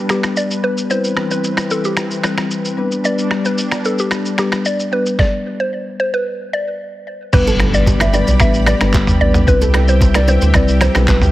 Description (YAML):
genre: afrobeats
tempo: 112 BPM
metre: 4/4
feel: straight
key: G major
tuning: A4 = 439 Hz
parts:
  - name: lush unison pad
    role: sustained chords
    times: 0.0-11.3 s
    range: E3 to B5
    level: -26 LUFS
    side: equal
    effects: chorus, tremolo, sidechain pumping
  - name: mallet-like synth pluck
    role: melody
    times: 0.1-11.3 s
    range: G4 to E5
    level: -20 LUFS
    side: equal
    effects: chorus, tape echo
  - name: marimba with medium mallets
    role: accompaniment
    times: 0.1-11.2 s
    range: G3 to B4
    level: -20 LUFS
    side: left 3 dB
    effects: none
  - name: lo-fi sampler-style drum kit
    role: drums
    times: 0.1-11.3 s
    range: crash cymbal, finger snaps, handclaps, kick drum, rim click, shaker, snare drum, toms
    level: -17 LUFS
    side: equal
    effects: none
  - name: round analog bass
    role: bass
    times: 7.3-11.3 s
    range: G1 to D2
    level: -15 LUFS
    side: equal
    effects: none
  - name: congas and bongos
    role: percussion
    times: 7.3-11.2 s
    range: none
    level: -26 LUFS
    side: right 2 dB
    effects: none
  - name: impact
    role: sound effects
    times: 7.3-9.5 s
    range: none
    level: -24 LUFS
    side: equal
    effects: none
  - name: nylon-string guitar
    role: riff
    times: 7.5-11.3 s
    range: B3 to D5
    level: -26 LUFS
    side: right 6 dB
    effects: tape echo
room: light reverb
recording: heavily compressed radio sound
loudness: -13 LUFS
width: side -16 dB against mid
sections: 0.0-7.3 A section; 7.3-11.3 B section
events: stop 5.2-7.3; impact 7.3-9.5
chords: 0.0 G; 0.9 Cmaj7; 2.8 G; 5.2 N.C.; 7.3 G; 9.5 Cmaj7